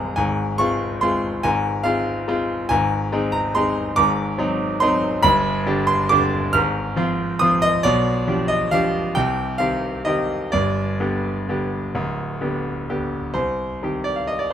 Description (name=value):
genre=classical, piano waltz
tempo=124-152 BPM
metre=3/4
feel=rubato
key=C minor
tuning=A4 = 435 Hz
part: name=bright grand piano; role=solo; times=0.0-14.5 s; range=C1 to F6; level=-18 LUFS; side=equal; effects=none
room=light reverb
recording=close, detailed microphones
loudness=-18 LUFS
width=side -9 dB against mid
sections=0.0-13.4 A section; 13.4-14.5 B section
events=none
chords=0.2 Fm/Ab; 2.7 Ab; 4.0 Ab7; 5.2 G; 6.5 Fm/Ab; 7.8 G7/B; 9.2 Cm; 10.5 G; 13.4 Cm